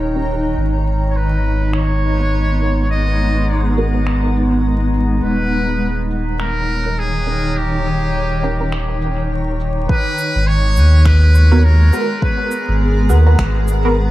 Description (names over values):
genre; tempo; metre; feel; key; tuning
ambient dub; 103 BPM; 4/4; swing 58% on 16ths; G# minor; A4 = 439 Hz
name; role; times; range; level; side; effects
granular cloud pad; sustained chords; 0.0-14.1 s; D#3 to A#5; -21 LUFS; equal; built-in reverb
warm sub bass; bass; 0.0-14.1 s; D#1 to D#2; -15 LUFS; equal; none
filtered dub chord stab; stabs; 0.2-13.9 s; B3 to A#4; -24 LUFS; right 3 dB; phaser, ensemble chorus, dub echo
electronic shaker and finger snaps; drums; 0.3-13.8 s; none; -32 LUFS; equal; low-pass filter on perc, low-pass filter on snare, low-pass filter on room, dub echo
trumpet with metal mute; melody; 1.1-12.8 s; G4 to D#5; -23 LUFS; right 1 dB; dub echo
electronic kick drum; drums; 9.9-13.5 s; none; -19 LUFS; equal; none
room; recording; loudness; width
light reverb; vinyl crackle; -13 LUFS; side -16 dB against mid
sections
0.0-9.9 A section; 9.9-14.1 B section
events
none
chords
0.0 D#7; 0.6 G#m7; 5.2 D#7; 9.9 G#m7